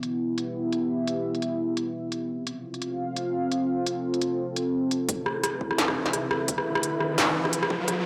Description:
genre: half-time drum and bass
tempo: 172 BPM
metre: 4/4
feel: swing 56% on 16ths, half-time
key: A minor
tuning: A4 = 442 Hz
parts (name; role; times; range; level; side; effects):
- dark analog pad; sustained chords; 0.0-8.1 s; B3 to F5; -30 LUFS; equal; chorus, sidechain pumping
- industrial drum kit; drums; 0.0-8.0 s; hi-hat, rim click, snare drum; -28 LUFS; equal; low-pass filter on hats, low-pass filter on snare, low-pass filter on room
- dark detuned saw bass; bass; 5.1-8.1 s; none; barely audible; none; none
- electronic kick drum; drums; 5.1-8.0 s; none; -37 LUFS; equal; high-pass filter on kick, high-pass filter on room
- riser; sound effects; 5.9-8.1 s; none; -35 LUFS; equal; none
- flickering grainy texture; texture; 5.6-8.1 s; B4; -38 LUFS; equal; built-in reverb
room: moderate huge ambient reverb, RT60 5.1 s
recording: dry, gritty hardware recording, high-pass filter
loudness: -27 LUFS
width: mono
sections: 0.0-5.1 A section; 5.1-8.1 B section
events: filter sweep on analog synth pad 0.0-5.1; build-up 5.1-8.1; riser 6.2-8.1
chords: 0.0 Em; 2.3 F; 5.1 Am

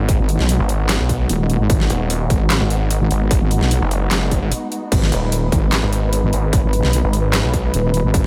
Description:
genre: heavy wobble dubstep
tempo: 149 BPM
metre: 4/4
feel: half-time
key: G# minor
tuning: A4 = 440 Hz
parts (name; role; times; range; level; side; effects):
- rich studio string section; sustained chords; 0.0-8.3 s; G#3 to B4; -27 LUFS; equal; sidechain pumping, low-pass filter
- snarling distorted saw bass; bass; 0.0-7.7 s; D#1 to B1; -21 LUFS; equal; overdrive
- dubstep drum kit; drums; 0.1-8.3 s; crash cymbal, handclaps, hi-hat, snare drum; -25 LUFS; equal; overdrive, studio reverb
- electronic kick drum; drums; 0.1-8.2 s; none; -21 LUFS; equal; distortion, studio reverb
- wobble bass; bass; 0.2-8.3 s; D#1 to B1; -20 LUFS; equal; chorus, overdrive
room: little or no reverb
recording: none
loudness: -18 LUFS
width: mono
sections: 0.0-8.3 A section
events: break 4.5-4.9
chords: 0.0 G#m

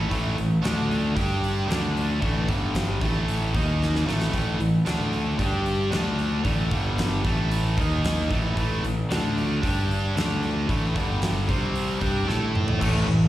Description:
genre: hard rock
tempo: 113 BPM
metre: 4/4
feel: straight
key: unclear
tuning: A4 = 437 Hz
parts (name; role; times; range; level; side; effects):
- distorted electric guitar; riff; 0.0-13.3 s; G2 to A4; -28 LUFS; left 5 dB; overdrive
- distorted electric guitar; riff; 0.0-13.3 s; G2 to A4; -29 LUFS; right 7 dB; overdrive
- fuzz fingered electric bass; bass; 0.0-13.3 s; G1 to A2; -26 LUFS; equal; overdrive
- huge arena drum kit; drums; 0.1-12.9 s; crash cymbal, hi-hat, kick drum, snare drum, toms; -29 LUFS; equal; none
- sludgy distorted guitar; riff; 12.8-13.3 s; A2 to A3; -26 LUFS; right 2 dB; overdrive, slapback echo
room: little or no reverb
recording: live gig heard through the venue's PA, recital hall reverb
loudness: -22 LUFS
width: side -14 dB against mid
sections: 0.0-12.8 A section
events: drum fill 3.8-4.3, 12.3-12.8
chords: 0.0 A5; 0.6 D5; 1.2 G5; 1.7 D5; 2.2 A5; 2.5 G5; 3.0 A5; 3.5 D#5; 4.1 A5; 4.9 D5; 5.4 G5; 5.9 D5; 6.5 A5; 6.7 G5; 7.2 A5; 7.8 D#5; 8.3 A5; 9.1 D5; 9.6 G5; 10.2 D5; 10.7 A5; 11.0 G5; 11.5 C5; 12.0 A5

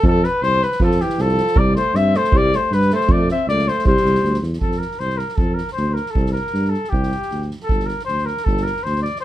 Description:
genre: balkan folk, Balkan brass band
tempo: 156 BPM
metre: 2/4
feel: straight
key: C major, F major from 4.6 s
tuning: A4 = 440 Hz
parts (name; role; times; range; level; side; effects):
- clear flugelhorn; melody; 0.0-9.2 s; G4 to E5; -20 LUFS; left 2 dB; none
- mellow tuba; bass; 0.0-9.1 s; G1 to G2; -20 LUFS; equal; none
- soft-mallet drum kit; percussion; 0.0-9.2 s; kick drum, snare drum; -22 LUFS; right 1 dB; none
- breathy alto saxophone; second line; 0.8-4.4 s; E3 to C4; -22 LUFS; right 1 dB; none
room: light reverb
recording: none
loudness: -16 LUFS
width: side -13 dB against mid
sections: 0.0-4.6 A section; 4.6-9.2 B section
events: none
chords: 0.0 F; 1.6 C5; 3.1 Dbmaj7#5; 3.9 C; 4.6 F5; 6.2 C5; 7.7 G5

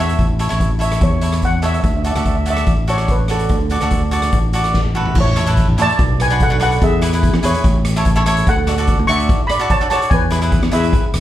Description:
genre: calypso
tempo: 145 BPM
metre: 4/4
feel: straight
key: A major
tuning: A4 = 441 Hz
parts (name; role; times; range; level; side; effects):
- steel pan; melody; 0.0-11.1 s; E4 to C#6; -20 LUFS; right 1 dB; slapback echo
- cavaquinho; accompaniment; 0.0-11.0 s; D4 to D5; -21 LUFS; equal; slapback echo
- fingered electric bass; bass; 0.0-11.2 s; E1 to E2; -18 LUFS; equal; none
- street-band drum kit; drums; 0.1-11.2 s; crash cymbal, hi-hat, kick drum, rim click, snare drum, toms; -18 LUFS; equal; none
room: little or no reverb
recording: live gig heard through the venue's PA, club reverb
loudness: -13 LUFS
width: side -13 dB against mid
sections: 0.0-5.2 A section; 5.2-11.2 B section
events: drum fill 4.8-5.2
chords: 0.0 A; 1.9 D; 5.2 A; 6.0 Bm7; 6.8 E; 7.6 A; 8.5 Dmaj7; 10.1 E

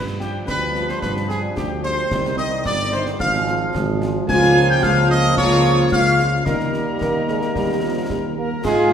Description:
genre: military-style march for wind band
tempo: 110 BPM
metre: 2/4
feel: straight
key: unclear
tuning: A4 = 444 Hz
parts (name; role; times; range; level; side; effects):
- warm trumpet section; melody; 0.0-8.9 s; G4 to Ab5; -23 LUFS; equal; none
- warm trombone section; sustained chords; 0.0-8.9 s; Eb3 to F4; -26 LUFS; right 1 dB; none
- dark tuba; bass; 0.0-8.9 s; G1 to Ab2; -22 LUFS; equal; none
- concert snare drum, concert bass drum and clash cymbals; drums; 0.1-8.9 s; none; -29 LUFS; equal; none
- mellow wooden piccolo; second line; 0.2-8.9 s; G5 to Ab6; -25 LUFS; left 2 dB; none
- warm French horn section; accompaniment; 0.2-8.9 s; F3 to F4; -23 LUFS; left 1 dB; none
- mellow euphonium; second line; 7.0-8.9 s; F3 to Bb3; -23 LUFS; right 3 dB; none
room: wet scoring stage reverb, RT60 1.5 s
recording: recorded in a church or concert hall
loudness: -16 LUFS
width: side -8 dB against mid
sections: 0.0-8.6 A section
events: none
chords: 0.0 G5; 2.1 Cm; 3.2 Fm/Ab; 4.3 Bbm/Db; 6.5 Eb

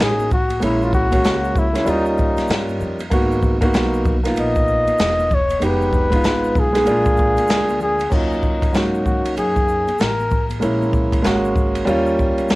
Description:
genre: hip hop, jazz-hop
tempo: 96 BPM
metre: 4/4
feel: swing 62% on 16ths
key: Eb minor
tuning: A4 = 439 Hz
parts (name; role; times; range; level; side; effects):
- breathy flugelhorn; melody; 0.0-10.5 s; Eb4 to Eb5; -20 LUFS; left 1 dB; cassette tape, tape echo
- dark grand piano; accompaniment; 0.0-12.6 s; Gb3 to Ab4; -20 LUFS; right 1 dB; none
- upright bass; bass; 0.0-12.6 s; Fb1 to Ab2; -25 LUFS; equal; none
- open jazz drum kit; drums; 0.0-12.6 s; crash cymbal, hi-hat, kick drum, ride cymbal, snare drum; -20 LUFS; equal; vintage 12-bit sampler grit, cassette tape
- congas and egg shaker; percussion; 0.2-12.6 s; none; -35 LUFS; left 4 dB; none
room: light reverb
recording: home recording on cassette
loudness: -15 LUFS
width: side -20 dB against mid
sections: 0.0-8.1 A section; 8.1-12.6 B section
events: flugelhorn solo 0.0-8.1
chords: 0.0 Ebm7; 0.6 Bbm7b5; 1.9 Eb7; 3.1 Abm7; 5.6 Fm7b5; 6.9 Bb7; 8.1 Ebm7; 10.6 Bbm7b5; 11.9 Eb7

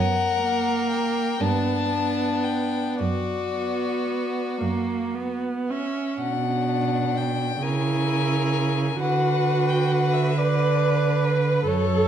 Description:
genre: classical, slow romantic movement for string quartet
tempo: 36-46 BPM (dotted quarters)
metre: 6/8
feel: rubato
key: B minor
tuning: A4 = 440 Hz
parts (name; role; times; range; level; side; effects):
- rich violin; melody; 0.0-12.1 s; B4 to A5; -27 LUFS; left 8 dB; none
- clear violin; second line; 0.0-12.1 s; D4 to B4; -29 LUFS; left 2 dB; none
- rich cello; bass; 0.0-12.1 s; F#2 to D3; -25 LUFS; right 3 dB; none
- clear viola; accompaniment; 0.4-12.1 s; A#3 to B4; -26 LUFS; right 4 dB; none
room: wet recital hall reverb, RT60 1.5 s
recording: dark, warm production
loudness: -21 LUFS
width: side -9 dB against mid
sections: 0.0-6.2 A section; 6.2-12.1 B section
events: none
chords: 0.0 F#; 1.4 G; 3.0 Bm/F#; 4.6 F#; 6.2 Bm; 7.6 A#dim/C#; 9.0 Bm/D

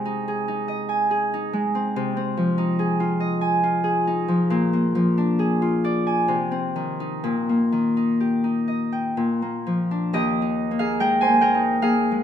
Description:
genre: classical, solo harp piece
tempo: 61-72 BPM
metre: 3/4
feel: rubato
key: Eb major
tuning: A4 = 440 Hz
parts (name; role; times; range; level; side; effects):
- Celtic harp; solo; 0.0-12.2 s; Eb2 to Ab5; -20 LUFS; equal; none
room: wet stone room reverb, RT60 1.4 s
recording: minimal, uncompressed stereo recording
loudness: -20 LUFS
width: side -9 dB against mid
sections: 0.0-10.1 A section; 10.1-12.2 B section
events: none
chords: 0.0 Ab/C; 2.0 Fm7/C; 4.5 Bb7; 6.3 Cm; 7.2 Eb/Bb; 9.2 Bb; 10.1 Eb

